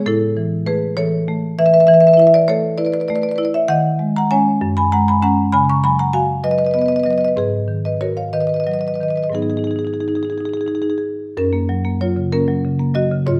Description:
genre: classical, contemporary piece for solo marimba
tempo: 58-68 BPM (dotted quarters)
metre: 6/8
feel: rubato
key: F# major from 3.7 s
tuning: A4 = 440 Hz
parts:
  - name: marimba with medium mallets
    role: solo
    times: 0.0-13.4 s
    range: F#2 to C#6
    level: -17 LUFS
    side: equal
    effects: none
room: moderate recital hall reverb, RT60 1.3 s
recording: none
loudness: -17 LUFS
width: mono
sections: 0.0-11.4 A section; 11.4-13.4 B section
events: none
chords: 0.1 Amaj7; 1.9 E7sus4; 3.7 D#m7; 4.6 F#sus2; 5.5 C#9sus4; 7.4 G#m7; 11.4 F#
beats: | 0.06 0.96 | 1.88 2.77 | 3.69 4.61 | 5.51 6.44 | 7.36 8.33 | 9.34 10.37 | 11.37 12.32 | 13.26

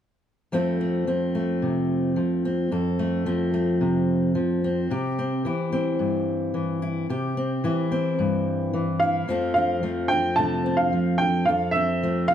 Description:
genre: folk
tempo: 110 BPM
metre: 4/4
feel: straight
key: F major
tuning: A4 = 442 Hz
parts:
  - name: fingerpicked steel-string acoustic guitar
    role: accompaniment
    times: 0.5-12.3 s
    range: F2 to A4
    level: -23 LUFS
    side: left 1 dB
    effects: none
  - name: clear upright piano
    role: melody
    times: 9.0-12.3 s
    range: E5 to A5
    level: -22 LUFS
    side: right 2 dB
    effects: none
room: moderate large studio reverb, RT60 1.0 s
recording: dark, warm production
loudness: -22 LUFS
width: side -9 dB against mid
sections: 0.5-9.3 A section; 9.3-12.3 B section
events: none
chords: 0.5 F; 4.9 C; 9.3 F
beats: | 0.52 1.06 1.61 2.16 | 2.71 3.25 3.80 4.35 | 4.90 5.45 5.99 6.54 | 7.09 7.64 8.19 8.73 | 9.28 9.83 10.38 10.93 | 11.47 12.02

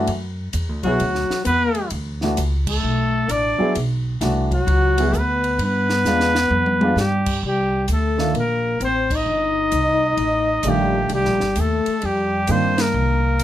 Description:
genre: modal jazz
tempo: 131 BPM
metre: 4/4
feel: swing 66% on 8ths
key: C dorian from 7.4 s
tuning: A4 = 440 Hz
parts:
  - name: warm baby grand piano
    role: accompaniment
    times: 0.0-13.2 s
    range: Eb3 to G#4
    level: -22 LUFS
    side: right 1 dB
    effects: none
  - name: upright bass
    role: bass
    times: 0.0-13.4 s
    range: G1 to G2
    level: -23 LUFS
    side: equal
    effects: none
  - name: compact cocktail drum kit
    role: drums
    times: 0.1-13.4 s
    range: crash cymbal, hi-hat, kick drum, ride cymbal, snare drum, toms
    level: -30 LUFS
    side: equal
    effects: none
  - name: warm trumpet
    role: melody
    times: 0.8-13.4 s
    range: F#4 to Eb5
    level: -22 LUFS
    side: right 1 dB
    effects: none
  - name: mellow trombone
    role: second line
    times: 0.8-13.4 s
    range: F#3 to Eb4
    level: -23 LUFS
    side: left 4 dB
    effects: none
room: moderate club ambience, RT60 0.5 s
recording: none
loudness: -17 LUFS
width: side -12 dB against mid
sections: 0.0-7.4 A section; 7.4-13.4 B section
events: band accent 2.6, 9.0, 12.7; drum fill 6.0-7.0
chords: 0.0 Bm11; 5.6 G7b9; 7.4 Cm11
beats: | 0.08 0.54 1.00 1.46 | 1.92 2.38 2.84 3.30 | 3.75 4.21 4.67 5.13 | 5.59 6.05 6.51 6.97 | 7.43 7.89 8.35 8.81 | 9.27 9.72 10.18 10.64 | 11.10 11.56 12.02 12.48 | 12.94 13.40

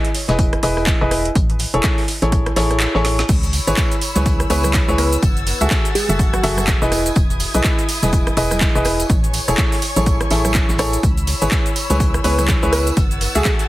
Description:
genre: piano house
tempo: 124 BPM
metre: 4/4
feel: swing 59% on 16ths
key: C# minor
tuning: A4 = 441 Hz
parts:
  - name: bright upright piano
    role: riff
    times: 0.0-13.6 s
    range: E4 to E5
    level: -21 LUFS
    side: equal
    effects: sidechain pumping, low-pass filter, tape echo
  - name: garage drum kit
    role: drums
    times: 0.0-13.7 s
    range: cabasa, crash cymbal, handclaps, hi-hat, rim click, snare drum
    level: -23 LUFS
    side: right 1 dB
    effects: overdrive
  - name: vintage brush drum kit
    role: drums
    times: 0.0-13.7 s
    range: hi-hat, snare drum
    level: -32 LUFS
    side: left 2 dB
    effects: none
  - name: organ-like FM bass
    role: bass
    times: 0.3-13.4 s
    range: E1 to C#2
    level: -20 LUFS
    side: equal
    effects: tube saturation, sidechain pumping
  - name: electronic kick drum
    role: drums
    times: 0.4-13.6 s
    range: none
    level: -18 LUFS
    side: equal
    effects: none
  - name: muted chamber violin section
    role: sustained chords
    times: 3.3-13.7 s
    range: E4 to A6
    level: -28 LUFS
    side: left 2 dB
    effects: sidechain pumping
  - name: tambourine and congas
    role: percussion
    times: 3.3-13.6 s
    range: none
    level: -28 LUFS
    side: right 3 dB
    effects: none
  - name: plucky unison lead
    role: melody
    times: 4.5-6.7, 12.2-13.5 s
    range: F#4 to B4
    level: -25 LUFS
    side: equal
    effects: cassette tape, tape echo
room: light reverb, small room ambience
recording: heavily compressed radio sound, multiband compression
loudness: -14 LUFS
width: side -16 dB against mid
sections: 0.0-13.7 A section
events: kick drops out 2.8-3.3; drum fill 3.0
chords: 0.0 Emaj7; 1.4 Amaj7; 3.3 C#m7; 5.2 F#m9; 6.9 Emaj7; 9.1 Amaj7; 11.0 C#m7; 13.0 F#m9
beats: 0.39 0.87 | 1.36 1.84 2.32 2.81 | 3.29 3.77 4.26 4.74 | 5.23 5.71 6.19 6.68 | 7.16 7.65 8.13 8.61 | 9.10 9.58 10.06 10.55 | 11.03 11.52 12.00 12.48 | 12.97 13.45

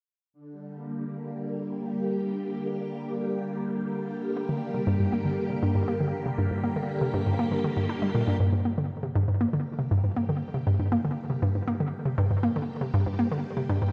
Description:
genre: ambient, sequencer-driven space music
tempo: 119 BPM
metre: 4/4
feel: straight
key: G minor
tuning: A4 = 440 Hz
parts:
  - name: phased string machine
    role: sustained chords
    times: 0.3-13.9 s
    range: D3 to G4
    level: -34 LUFS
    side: equal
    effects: ensemble chorus, phaser
  - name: hollow square pluck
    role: riff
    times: 4.4-13.9 s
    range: G2 to D4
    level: -28 LUFS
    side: equal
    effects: chorus, tape echo
room: wet echo chamber reverb, RT60 2.1 s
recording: echo-heavy mix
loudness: -28 LUFS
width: mono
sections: 0.3-8.4 A section; 8.4-13.9 B section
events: filter sweep on string machine 0.3-8.4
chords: 0.3 Gm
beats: | 0.33 0.84 1.34 1.84 | 2.35 2.85 3.36 3.86 | 4.37 4.87 5.37 5.88 | 6.38 6.89 7.39 7.89 | 8.40 8.90 9.41 9.91 | 10.42 10.92 11.43 11.93 | 12.43 12.94 13.44

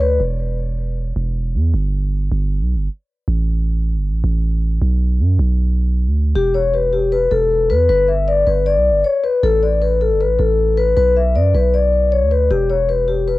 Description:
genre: hip hop, trap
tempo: 156 BPM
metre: 4/4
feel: half-time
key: B minor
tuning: A4 = 441 Hz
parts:
  - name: vibraphone with soft mallets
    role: melody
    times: 0.0-0.2, 6.4-13.4 s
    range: G4 to E5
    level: -16 LUFS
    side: left 4 dB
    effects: cassette tape, tape echo
  - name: long sustained 808-style bass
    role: bass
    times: 0.0-13.4 s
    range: E1 to F#2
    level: -17 LUFS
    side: right 1 dB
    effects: none
room: small room ambience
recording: home recording on cassette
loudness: -14 LUFS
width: side -17 dB against mid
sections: 0.0-13.4 A section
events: break 0.2-6.4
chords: 0.2 N.C.; 4.8 Bm; 6.4 Emadd11; 7.9 G; 9.4 Gadd9 (rootless); 11.0 Bm; 12.5 Em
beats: | 0.20 0.58 0.97 1.35 | 1.74 2.12 2.51 2.89 | 3.28 3.66 4.05 4.43 | 4.82 5.20 5.58 5.97 | 6.36 6.74 7.12 7.51 | 7.89 8.28 8.66 9.05 | 9.43 9.82 10.20 10.59 | 10.97 11.36 11.74 12.12 | 12.51 12.89 13.28

